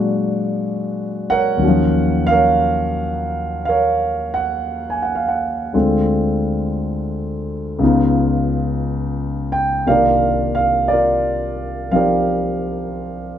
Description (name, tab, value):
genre	jazz ballad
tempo	58 BPM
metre	4/4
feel	swing 66% on 8ths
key	unclear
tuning	A4 = 440 Hz
part	warm concert grand piano	solo	0.0-13.4 s	C2 to Ab5	-16 LUFS	equal	none
room	moderate large studio reverb, RT60 1.0 s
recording	band playing live in one room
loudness	-16 LUFS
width	side -10 dB against mid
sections	0.0-13.4 A section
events	none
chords	0.0 Bb7b13; 1.6 Ebm9; 5.7 Dm7b5; 7.8 Db9; 9.9 Cm11